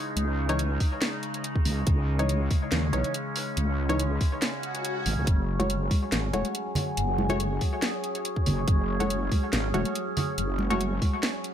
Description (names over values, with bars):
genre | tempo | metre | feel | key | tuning
deep dubstep | 141 BPM | 4/4 | swing 53% on 16ths, half-time | F# dorian | A4 = 439 Hz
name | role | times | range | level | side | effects
overtone-sweeping drone | sustained chords | 0.0-11.5 s | C#3 to G#4 | -32 LUFS | equal | chorus, built-in reverb
wobble bass | bass | 0.2-11.0 s | E1 to D#2 | -27 LUFS | equal | chorus
garage drum kit | drums | 0.2-11.5 s | hi-hat, snare drum | -31 LUFS | equal | none
filtered dub chord stab | stabs | 0.5-10.8 s | E3 to C#5 | -33 LUFS | left 1 dB | chorus, dub echo
electronic kick drum | drums | 0.8-11.1 s | none | -25 LUFS | equal | none
swell | sound effects | 4.5-5.3 s | none | -35 LUFS | left 3 dB | none
congas | percussion | 5.6-11.1 s | none | -32 LUFS | right 1 dB | dub echo
room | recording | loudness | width
light reverb | none | -24 LUFS | side -9 dB against mid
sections
0.0-11.5 A section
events
break 4.4-5.3; swell 4.5-5.3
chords
0.0 C#madd9; 5.3 F#m